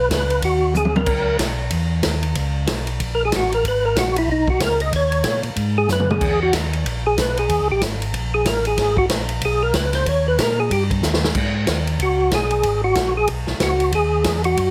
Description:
soul jazz organ trio; 187 BPM; 4/4; swing 61% on 8ths; G# minor; A4 = 441 Hz
percussive tonewheel organ; melody; 0.0-14.7 s; D#4 to D#5; -21 LUFS; equal; slow rotary speaker, chorus vibrato
mellow tonewheel organ; bass; 0.0-14.7 s; G#1 to A#2; -25 LUFS; equal; overdrive, chorus vibrato, slow rotary speaker
swinging big-band drum kit; drums; 0.1-14.7 s; crash cymbal, hi-hat, kick drum, ride cymbal, snare drum, toms; -25 LUFS; equal
light reverb; heavily compressed radio sound; -20 LUFS; mono
0.0-11.4 A section; 11.4-14.7 A section
tonewheel organ solo 0.0-11.4, 11.4-14.7; drum fill 0.7-1.1, 5.9-6.2, 11.0-11.4
0.0 G#m7; 1.1 C#m7; 3.6 G#m7; 6.2 E5; 7.5 D#5; 8.8 G#m; 10.1 D#; 11.4 G#m7
0.11 0.43 0.75 | 1.07 1.39 1.71 2.04 | 2.36 2.68 3.00 3.32 | 3.64 3.96 4.28 4.61 | 4.93 5.25 5.57 5.89 | 6.21 6.53 6.85 7.17 | 7.50 7.82 8.14 8.46 | 8.78 9.10 9.42 9.74 | 10.07 10.39 10.71 11.03 | 11.35 11.67 12.00 12.32 | 12.64 12.96 13.28 13.61 | 13.93 14.25 14.57

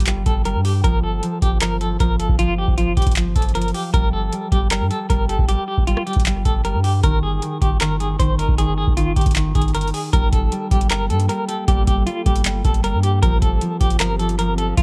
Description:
hip hop, trap; 155 BPM; 4/4; half-time; G minor; A4 = 437 Hz
semi-hollow electric guitar; melody; 0.0-14.8 s; F4 to C5; -27 LUFS; equal; tremolo, analog delay
concert harp; accompaniment; 0.0-14.8 s; Eb3 to F5; -27 LUFS; equal
long sustained 808-style bass; bass; 0.0-14.8 s; G1 to G2; -24 LUFS; equal
booming analog drum machine; drums; 0.0-14.8 s; handclaps, hi-hat, kick drum, rim click; -21 LUFS; equal
warbly tape-like pad; sustained chords; 11.0-14.8 s; F3 to A4; -33 LUFS; equal; chorus, built-in reverb, phaser
little or no reverb; echo-heavy mix; -19 LUFS; mono
0.0-10.1 A section; 10.1-14.8 B section
0.0 N.C.; 0.8 Fsus2/G; 7.0 Ab5/G; 10.1 Gmadd9; 13.2 Fsus2/G
0.07 0.45 | 0.84 1.23 1.61 2.00 | 2.39 2.78 3.16 3.55 | 3.94 4.33 4.71 5.10 | 5.49 5.87 6.26 6.65 | 7.03 7.42 7.81 8.20 | 8.58 8.97 9.36 9.74 | 10.13 10.52 10.90 11.29 | 11.68 12.07 12.45 12.84 | 13.23 13.62 14.00 14.39 | 14.78

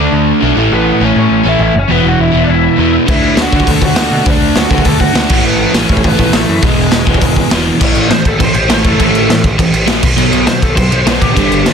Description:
punk rock; 203 BPM; 4/4; straight; A major; A4 = 441 Hz
lead guitar through a small cranked amp; melody; 0.0-11.7 s; G#3 to A5; -17 LUFS; left 2 dB; overdrive, digital delay
crunchy overdriven guitar; riff; 0.0-11.7 s; E2 to D4; -12 LUFS; right 1 dB
growling picked electric bass; bass; 0.0-11.7 s; E1 to D3; -17 LUFS; equal; overdrive
raw garage drum kit; drums; 3.1-11.7 s; crash cymbal, hi-hat, kick drum, snare drum; -12 LUFS; equal
little or no reverb; dense, heavily limited modern master; -8 LUFS; side -6 dB against mid
0.0-7.8 A section; 7.8-11.7 B section
lead electric guitar solo 7.8-11.7
0.0 D5; 0.6 A; 1.9 E5; 3.1 D; 5.3 A; 6.6 E; 7.8 A5; 10.0 B5
0.13 0.42 | 0.72 1.01 1.31 1.60 | 1.90 2.20 2.49 2.79 | 3.08 3.38 3.67 3.97 | 4.27 4.56 4.86 5.15 | 5.45 5.74 6.04 6.33 | 6.63 6.92 7.22 7.51 | 7.81 8.11 8.40 8.70 | 8.99 9.29 9.59 9.88 | 10.18 10.47 10.77 11.06 | 11.36 11.65

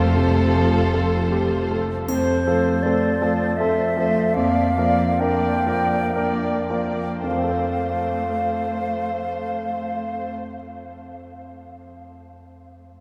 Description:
classical, romantic movement for piano and orchestra; 52-81 BPM; 3/4; rubato; F major; A4 = 440 Hz
bright concert grand piano; melody; 0.0-13.0 s; F2 to F5; -26 LUFS; equal
rich studio violin section; melody; 0.0-1.8 s; C5; -37 LUFS; equal
rich chamber violin section; second line; 0.0-1.7 s; A4; -33 LUFS; equal
rich studio viola section; accompaniment; 0.0-10.3 s; A3 to D5; -29 LUFS; equal
rich symphonic cello section; bass; 0.0-1.9 s; F2; -31 LUFS; equal
rich symphonic double bass section; bass; 0.0-1.8 s; F1; -28 LUFS; equal
mellow silver concert flute; second line; 2.1-10.3 s; C5 to G5; -27 LUFS; equal
triangle; percussion; 2.1-3.5 s; -43 LUFS; equal
wet huge ambient reverb, RT60 8.3 s; in a vast, echoing space; -21 LUFS; mono
0.0-2.1 A section; 2.1-7.2 B section; 7.2-13.0 C section
slowing down 0.9-7.2
0.0 F; 4.4 Bb/F; 7.2 F
0.55 1.32 | 2.08 2.84 3.58 | 4.36 5.20 6.15 | 7.24 8.27 9.30 | 10.34 11.37 12.41

